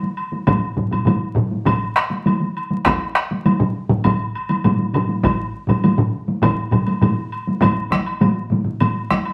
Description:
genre	japanese traditional, taiko drum ensemble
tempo	101 BPM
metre	4/4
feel	straight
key	none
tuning	none
part	taiko ensemble	percussion	0.0-9.3 s	none	-22 LUFS	equal	none
part	woodblock	percussion	0.2-9.3 s	none	-28 LUFS	equal	none
part	solo taiko drums	percussion	0.5-9.2 s	none	-26 LUFS	equal	none
part	taiko ensemble	percussion	0.5-7.2 s	none	-23 LUFS	equal	none
part	taiko ensemble	percussion	0.5-9.2 s	none	-26 LUFS	equal	none
room	wet studio reverb, RT60 0.8 s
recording	vinyl crackle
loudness	-19 LUFS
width	mono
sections	0.0-7.6 A section; 7.6-9.3 B section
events	none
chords	none

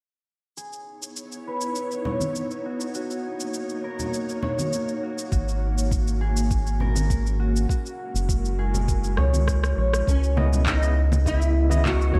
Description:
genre	sunset chillout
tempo	101 BPM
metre	4/4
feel	straight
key	unclear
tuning	A4 = 438 Hz
part	ethereal airy pad	sustained chords	1.1-10.0 s	G#3 to C#5	-34 LUFS	equal	ensemble chorus, built-in reverb
part	concert harp	arpeggios	0.6-11.7 s	F#4 to C#5	-34 LUFS	equal	vintage 12-bit sampler grit, low-pass filter, delay
part	electronic shaker, rim click, congas and handclaps	drums	0.6-12.1 s	none	-34 LUFS	equal	none
part	congas	percussion	2.1-12.2 s	none	-34 LUFS	equal	none
part	round analog bass	bass	5.3-12.2 s	F#1 to D#2	-24 LUFS	equal	tube saturation
part	electronic kick drum	drums	5.3-12.0 s	none	-28 LUFS	equal	none
part	nylon-string guitar	melody	10.1-12.2 s	C#4 to F#4	-30 LUFS	equal	ensemble chorus, delay
part	overdriven tine electric piano	accompaniment	10.4-12.2 s	C#3 to D#5	-32 LUFS	equal	fast tremolo, delay
room	light reverb, small room ambience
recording	none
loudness	-24 LUFS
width	mono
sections	0.6-10.1 A section; 10.1-12.2 B section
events	filter sweep on harp 0.6-10.1; drum fill 9.2-10.1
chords	0.6 C#m9; 2.6 D#m7; 5.3 G#9sus4; 7.7 F#9; 10.1 C#m9

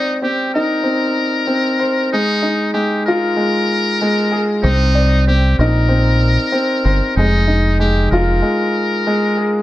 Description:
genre	hip hop, boom-bap hip-hop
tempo	95 BPM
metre	4/4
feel	swing 59% on 16ths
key	C minor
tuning	A4 = 441 Hz
part	trumpet with metal mute	melody	0.0-9.6 s	Eb4 to Bb4	-20 LUFS	left 2 dB	high-pass filter, low-pass filter
part	warm grand piano	accompaniment	0.0-9.6 s	Ab3 to D5	-17 LUFS	equal	high-pass filter, low-pass filter
part	deep dub fingered electric bass	bass	4.6-8.4 s	F1 to C2	-14 LUFS	equal	none
room	light reverb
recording	none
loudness	-13 LUFS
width	side -15 dB against mid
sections	0.0-9.6 A section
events	break 8.4-9.6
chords	0.0 Cm9; 2.1 Fm7; 4.6 Cm9; 7.2 Fm7

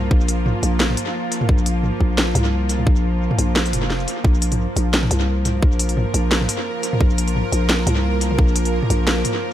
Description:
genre	half-time drum and bass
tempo	174 BPM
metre	4/4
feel	swing 55% on 16ths, half-time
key	unclear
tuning	A4 = 442 Hz
part	bowed-like drone	sustained chords	0.0-9.5 s	F3 to Bb4	-24 LUFS	right 1 dB	built-in reverb, sidechain pumping
part	growling 808-style bass	bass	0.0-9.2 s	F1 to C2	-20 LUFS	equal	none
part	electronic kick drum	drums	0.1-8.5 s	none	-16 LUFS	equal	none
part	drum and bass drum kit	drums	0.2-9.3 s	hi-hat, shaker, snare drum, toms	-22 LUFS	equal	tape echo
room	light reverb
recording	echo-heavy mix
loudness	-16 LUFS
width	side -12 dB against mid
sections	0.0-4.2 A section; 4.2-9.5 A section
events	drop 0.0-4.2, 4.2-9.5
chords	0.0 Bb5

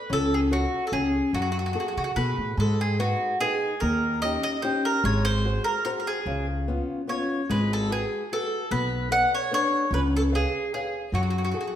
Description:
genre	italian folk, Italian serenade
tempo	147 BPM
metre	3/4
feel	straight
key	F# harmonic minor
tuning	A4 = 439 Hz
part	mandolin	melody	0.0-11.7 s	F#4 to F#5	-26 LUFS	right 1 dB	slapback echo
part	nylon-string guitar	accompaniment	0.1-11.8 s	C#3 to E#5	-28 LUFS	left 3 dB	none
part	upright bass	bass	0.1-11.5 s	G#1 to C#3	-27 LUFS	right 1 dB	none
room	wet recital hall reverb, RT60 1.6 s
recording	none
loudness	-23 LUFS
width	side -10 dB against mid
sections	0.0-11.8 A section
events	none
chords	0.1 F#m/C#; 0.9 C#5; 1.3 F#madd9; 2.6 G#m; 3.8 D#7; 5.1 G#7; 6.3 C#7; 7.5 G#m7; 8.7 Bm7; 9.9 C#7; 11.1 F#madd9

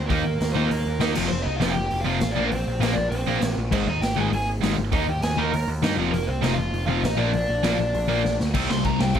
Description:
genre	punk rock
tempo	199 BPM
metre	4/4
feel	straight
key	unclear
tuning	A4 = 438 Hz
part	overdriven electric guitar	melody	0.0-9.2 s	Bb3 to C6	-27 LUFS	equal	none
part	growling picked electric bass	bass	0.0-9.2 s	F1 to G2	-27 LUFS	equal	overdrive
part	overdriven electric guitar	riff	0.1-9.2 s	F2 to Eb4	-27 LUFS	right 12 dB	none
part	sludgy distorted guitar	riff	0.1-9.2 s	F2 to Eb4	-27 LUFS	left 9 dB	overdrive
part	raw garage drum kit	drums	0.1-9.2 s	crash cymbal, hi-hat, kick drum, snare drum	-28 LUFS	right 1 dB	none
part	thick fuzz guitar	riff	8.5-9.2 s	C3 to Eb4	-31 LUFS	left 2 dB	distortion
room	little or no reverb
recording	none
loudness	-21 LUFS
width	side -8 dB against mid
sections	0.0-8.6 A section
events	half time 0.0-8.6; drum fill 8.3-8.6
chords	0.1 Eb5; 1.2 F5; 2.4 Bb; 3.7 Ab; 4.9 Eb; 6.0 F; 7.2 Bb; 8.6 Cm

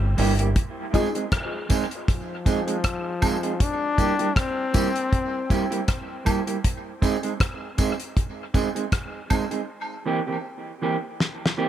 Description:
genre	dub reggae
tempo	79 BPM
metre	4/4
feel	swing 56% on 16ths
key	F dorian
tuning	A4 = 441 Hz
part	bright trombone	melody	0.0-6.3 s	F3 to D4	-28 LUFS	left 4 dB	dub echo
part	deep dub fingered electric bass	bass	0.0-0.5 s	G1	-21 LUFS	equal	none
part	mellow electric guitar	accompaniment	0.2-11.7 s	E3 to Ab4	-27 LUFS	right 5 dB	high-pass filter, dub echo
part	damped 70s drum kit	drums	0.2-11.6 s	hi-hat, kick drum, rim click, snare drum	-24 LUFS	equal	none
part	filtered dub chord stab	stabs	0.9-1.2 s	Eb4 to Ab4	-32 LUFS	left 6 dB	phaser, high-pass filter, dub echo
part	tambourine and woodblock	percussion	0.9-9.5 s	none	-35 LUFS	right 1 dB	dub echo
room	light reverb, small room ambience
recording	none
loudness	-22 LUFS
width	side -11 dB against mid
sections	0.6-11.7 A section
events	break 0.0-0.6, 0.6-11.7; drum fill 11.2-11.7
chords	0.0 C7; 0.6 Fm7; 3.6 C7; 6.6 Ab; 9.7 C7

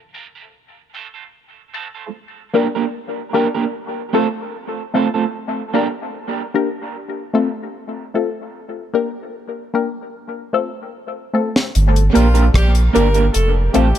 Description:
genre	dub reggae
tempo	75 BPM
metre	4/4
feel	straight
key	G minor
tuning	A4 = 441 Hz
part	electric guitar through a small old amp	accompaniment	0.1-5.9, 12.1-13.9 s	A3 to Bb4	-21 LUFS	right 6 dB	high-pass filter, dub echo
part	filtered dub chord stab	stabs	0.1-13.9 s	A3 to Bb4	-21 LUFS	left 5 dB	phaser, high-pass filter, dub echo
part	deep reggae drum kit	drums	11.6-14.0 s	hi-hat, kick drum, rim click, snare drum	-20 LUFS	equal	dub echo
part	soft dub sub bass	bass	11.8-13.9 s	F1 to Bb1	-14 LUFS	equal	none
part	warm horn section	second line	12.1-14.0 s	F3 to Bb4	-21 LUFS	left 1 dB	dub echo
room	light reverb, small room reverb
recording	echo-heavy mix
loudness	-16 LUFS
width	side -10 dB against mid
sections	0.0-11.7 A section; 11.7-14.0 B section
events	drum fill 10.9-11.7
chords	0.0 Gm; 0.5 F; 2.1 Gm; 3.7 F; 5.3 Gm; 6.9 F; 8.5 Gm; 10.1 F; 11.7 Gm; 13.3 F

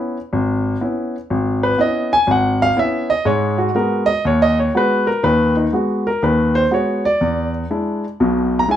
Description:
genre	solo jazz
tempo	122 BPM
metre	4/4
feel	swing 66% on 8ths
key	G# minor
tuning	A4 = 440 Hz
part	warm baby grand piano	solo	0.0-8.8 s	G#1 to A#5	-15 LUFS	equal	none
room	light reverb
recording	minimal, uncompressed stereo recording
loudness	-15 LUFS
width	side -10 dB against mid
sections	0.0-8.8 A section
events	grand piano solo 0.0-8.8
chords	0.0 C#m7; 3.3 G#m7; 7.2 E7

